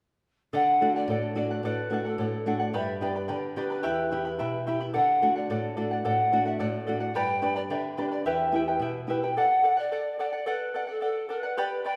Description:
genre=andean folk, Andean ensemble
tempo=109 BPM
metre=2/4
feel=straight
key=unclear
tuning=A4 = 440 Hz
part: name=reedy pan flute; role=melody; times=0.5-12.0 s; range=A4 to G5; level=-30 LUFS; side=equal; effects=none
part: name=charango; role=accompaniment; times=0.5-12.0 s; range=E4 to B5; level=-33 LUFS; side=equal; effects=none
part: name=nylon-string guitar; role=accompaniment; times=0.5-9.3 s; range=E2 to G4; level=-33 LUFS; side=equal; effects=none
room=wet recital hall reverb, RT60 1.4 s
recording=none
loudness=-27 LUFS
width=mono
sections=0.5-9.4 A section; 9.4-12.0 A section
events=none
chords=0.5 D; 2.7 G; 3.8 Em; 5.0 D; 7.2 G; 8.3 Em; 9.4 D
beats=| 0.54 1.09 | 1.64 2.19 | 2.74 3.30 | 3.85 4.40 | 4.95 5.50 | 6.05 6.61 | 7.16 7.71 | 8.26 8.81 | 9.36 9.91 | 10.46 11.01 | 11.56

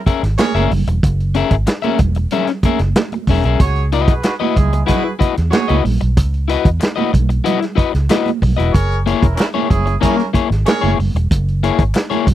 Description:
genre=funk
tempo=93 BPM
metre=4/4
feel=straight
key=unclear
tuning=A4 = 440 Hz
part: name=electric guitar at the edge of break-up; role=accompaniment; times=0.1-12.3 s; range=A#3 to E5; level=-18 LUFS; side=left 9 dB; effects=none
part: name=vintage muted fingered electric bass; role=bass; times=0.1-12.3 s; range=E1 to E2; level=-16 LUFS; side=right 1 dB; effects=none
part: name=warm soul drum kit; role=drums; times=0.1-12.3 s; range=hi-hat, kick drum, snare drum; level=-16 LUFS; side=right 1 dB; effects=none
part: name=congas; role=percussion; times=0.1-12.3 s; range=none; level=-23 LUFS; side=right 7 dB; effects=none
part: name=warm horn section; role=second line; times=0.4-10.9 s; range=G#3 to C#5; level=-21 LUFS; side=right 3 dB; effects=none
part: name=group handclap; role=percussion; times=0.4-12.1 s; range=none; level=-30 LUFS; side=left 5 dB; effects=none
room=little or no reverb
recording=dry, close 1970s-style studio recording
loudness=-13 LUFS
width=side -12 dB against mid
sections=0.0-12.3 A section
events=none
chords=0.0 F#9; 3.6 C#m11; 8.7 F#9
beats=0.39 | 1.03 1.67 2.31 2.96 | 3.60 4.24 4.88 5.53 | 6.17 6.81 7.45 8.09 | 8.74 9.38 10.02 10.66 | 11.31 11.95

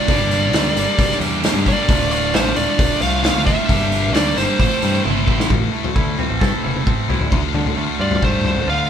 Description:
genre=quiet-loud alternative rock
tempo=133 BPM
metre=4/4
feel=straight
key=D minor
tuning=A4 = 440 Hz
part: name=fuzz lead guitar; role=melody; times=0.0-5.0, 8.0-8.9 s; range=C5 to F5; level=-21 LUFS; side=right 1 dB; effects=distortion
part: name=fuzz guitar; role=riff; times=0.0-5.5 s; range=D2 to A4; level=-22 LUFS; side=right 6 dB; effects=distortion
part: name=scooped high-gain guitar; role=riff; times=0.0-8.9 s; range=D2 to A4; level=-23 LUFS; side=left 8 dB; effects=distortion
part: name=growling picked electric bass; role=bass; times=0.1-8.9 s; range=D1 to D3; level=-22 LUFS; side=left 1 dB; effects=overdrive
part: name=loose indie drum kit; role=drums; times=0.1-8.7 s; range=hi-hat, kick drum, snare drum, toms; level=-20 LUFS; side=equal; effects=none
part: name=twangy electric guitar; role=arpeggios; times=5.5-8.9 s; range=D2 to A4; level=-26 LUFS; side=right 8 dB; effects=none
room=light reverb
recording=band playing live in one room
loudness=-15 LUFS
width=side -8 dB against mid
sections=0.0-5.5 A section; 5.5-7.3 B section; 7.3-8.9 C section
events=drum fill 5.0-5.5, 6.4-7.3; lead electric guitar solo 7.3-8.9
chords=0.1 Gm; 1.9 Dm; 3.7 Gm; 4.6 Am7; 5.5 Am; 7.3 Dm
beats=| 0.08 0.53 0.98 1.44 | 1.89 2.34 2.79 3.24 | 3.69 4.14 4.59 5.05 | 5.50 5.95 6.41 6.86 | 7.32 7.77 8.22 8.68

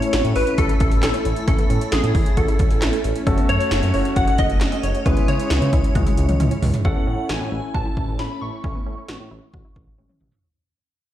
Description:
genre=synth-pop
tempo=134 BPM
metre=4/4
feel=straight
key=unclear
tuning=A4 = 440 Hz
part: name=shimmering bell with halo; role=melody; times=0.0-9.9 s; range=G#4 to C#6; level=-25 LUFS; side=equal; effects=ensemble chorus, phaser, low-pass filter, ping-pong delay
part: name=warm concert grand piano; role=accompaniment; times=0.0-10.4 s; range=G#3 to C#5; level=-28 LUFS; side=left 2 dB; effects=low-pass filter
part: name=brassy analog pad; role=sustained chords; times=0.0-10.4 s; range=C#3 to G#4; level=-29 LUFS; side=right 1 dB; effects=chorus, low-pass filter
part: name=wide unison pluck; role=arpeggios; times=0.0-10.3 s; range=B3 to F#4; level=-32 LUFS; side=right 1 dB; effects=low-pass filter, ping-pong delay
part: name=80s electronic pad drums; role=drums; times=0.0-10.4 s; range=handclaps, hi-hat, kick drum, snare drum, toms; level=-21 LUFS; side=equal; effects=gated reverb on snare and toms, overdrive
part: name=smooth synth bass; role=bass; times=0.1-10.3 s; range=F#1 to C#3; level=-23 LUFS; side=equal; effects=none
room=light reverb, digital ambience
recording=played on a big sound system in a bare room, stone room reverb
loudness=-17 LUFS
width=side -12 dB against mid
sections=0.0-6.8 A section; 6.8-10.4 B section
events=drum fill 6.0-6.8, 10.0-10.4; fade-out 6.8-10.4; filter sweep 6.8-10.4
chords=0.0 A; 3.3 F#m; 5.1 C#m; 6.8 A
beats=0.13 0.58 1.03 | 1.48 1.92 2.37 2.82 | 3.27 3.71 4.16 4.61 | 5.06 5.50 5.95 6.40 | 6.85 7.30 7.74 8.19 | 8.64 9.09 9.54 9.98

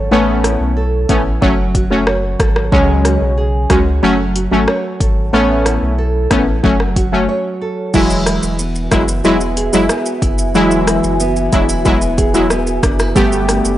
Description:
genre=dancehall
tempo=92 BPM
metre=4/4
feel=straight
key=unclear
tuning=A4 = 440 Hz
part: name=nylon-string guitar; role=arpeggios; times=0.0-13.8 s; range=C#3 to C#5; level=-20 LUFS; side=right 2 dB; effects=analog delay
part: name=saturated sub bass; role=bass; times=0.0-13.8 s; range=E1 to C#2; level=-19 LUFS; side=equal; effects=none
part: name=synth brass stab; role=accompaniment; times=0.1-13.8 s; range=F#3 to G4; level=-15 LUFS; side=left 1 dB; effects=chorus, sidechain pumping
part: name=deep house drum kit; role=drums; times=0.4-13.8 s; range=crash cymbal, hi-hat, kick drum, rim click, shaker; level=-17 LUFS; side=equal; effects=overdrive
part: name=ethereal airy pad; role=sustained chords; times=8.8-13.8 s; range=F#4 to A5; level=-22 LUFS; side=equal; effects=ensemble chorus, built-in reverb, sidechain pumping
room=light reverb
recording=dry, gritty hardware recording, nothing above 10.7 kHz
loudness=-12 LUFS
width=side -13 dB against mid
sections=0.0-7.9 A section; 7.9-13.8 B section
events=break 7.3-7.9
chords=0.1 Aadd9; 1.4 F#m; 2.7 C#sus4; 4.0 F#m; 5.3 Aadd9; 6.6 F#m; 7.9 Eadd9; 13.2 Gadd9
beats=| 0.12 0.77 1.42 2.07 | 2.72 3.38 4.03 4.68 | 5.33 5.98 6.64 7.29 | 7.94 8.59 9.24 9.90 | 10.55 11.20 11.85 12.51 | 13.16

